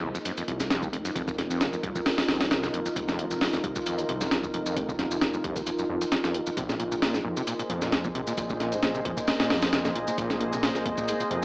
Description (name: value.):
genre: breakbeat, breaks.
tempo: 133 BPM.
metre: 4/4.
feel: swing 54% on 16ths.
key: F minor.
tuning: A4 = 438 Hz.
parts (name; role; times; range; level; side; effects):
deep dark ambient pad; sustained chords; 0.0-11.4 s; Bb3 to Eb5; -31 LUFS; equal; chorus, built-in reverb, sidechain pumping.
overdriven acid bass; riff; 0.0-11.4 s; Eb2 to C3; -33 LUFS; equal; distortion, analog delay.
detuned saw bass; bass; 0.0-11.4 s; F1 to F2; -34 LUFS; equal; none.
shaker; drums; 0.2-11.4 s; none; -39 LUFS; equal; none.
breakbeat sampler-style drum kit; drums; 0.3-11.4 s; hi-hat, kick drum, snare drum; -28 LUFS; equal; none.
room: light reverb, digital ambience.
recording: dry, gritty hardware recording, vinyl crackle, AM radio sound.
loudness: -25 LUFS.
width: side -26 dB against mid.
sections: 0.0-11.4 A section.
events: none.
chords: 0.0 F7sus4; 6.6 Bb9sus4.